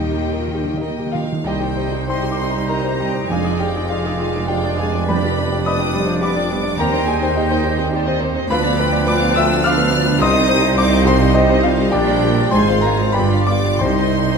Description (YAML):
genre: classical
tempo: 87-106 BPM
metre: 3/4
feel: rubato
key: C minor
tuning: A4 = 442 Hz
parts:
  - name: clear concert grand piano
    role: melody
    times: 0.0-14.4 s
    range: Bb1 to F6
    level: -20 LUFS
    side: left 2 dB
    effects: none
  - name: warm symphonic violin section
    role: melody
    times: 0.0-14.4 s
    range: Bb4 to Ab5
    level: -30 LUFS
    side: left 2 dB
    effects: none
  - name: clear symphonic violin section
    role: second line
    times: 0.0-14.4 s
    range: Eb5 to F6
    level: -26 LUFS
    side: left 2 dB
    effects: none
  - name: rich symphonic viola section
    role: accompaniment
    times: 0.0-14.4 s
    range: Ab3 to Bb4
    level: -26 LUFS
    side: right 3 dB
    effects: none
  - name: dark French horn section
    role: sustained chords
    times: 0.0-14.4 s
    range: F3 to F4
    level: -24 LUFS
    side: left 4 dB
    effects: none
  - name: clear symphonic double bass section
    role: bass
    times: 0.0-14.4 s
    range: F1 to Eb2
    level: -24 LUFS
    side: right 4 dB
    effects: none
  - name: rich symphonic cello section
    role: bass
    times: 0.0-14.4 s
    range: D2 to Eb3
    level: -25 LUFS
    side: right 4 dB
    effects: none
  - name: timpani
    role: percussion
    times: 0.0-1.4, 13.8-14.4 s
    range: C3 to Eb3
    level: -27 LUFS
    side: right 1 dB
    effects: none
  - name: bright clarinet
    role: second line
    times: 1.5-14.4 s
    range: D4 to F4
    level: -28 LUFS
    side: left 2 dB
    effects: none
  - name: warm oboe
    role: second line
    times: 1.5-14.4 s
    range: B4 to D5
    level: -30 LUFS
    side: right 2 dB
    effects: none
  - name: warm bassoon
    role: accompaniment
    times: 1.5-14.4 s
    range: F3 to Ab3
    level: -28 LUFS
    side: right 4 dB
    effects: none
  - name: clear tuba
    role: bass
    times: 1.5-14.4 s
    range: F1 to Eb2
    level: -26 LUFS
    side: right 7 dB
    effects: none
  - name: large flute ensemble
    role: second line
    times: 2.1-14.4 s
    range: B4 to Ab5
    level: -27 LUFS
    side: right 2 dB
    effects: none
room: light reverb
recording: close, detailed microphones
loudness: -15 LUFS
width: side -5 dB against mid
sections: 0.0-1.5 A section; 1.5-14.4 B section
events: timpani fill 0.0-1.5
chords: 0.0 Eb; 1.5 Cm; 3.3 Ddim/F; 5.1 G7/F; 6.8 Cm/Eb; 8.5 Bdim/D; 10.2 Cm; 11.9 Gm/Bb; 12.5 Fm/Ab; 13.2 G7; 13.8 Cm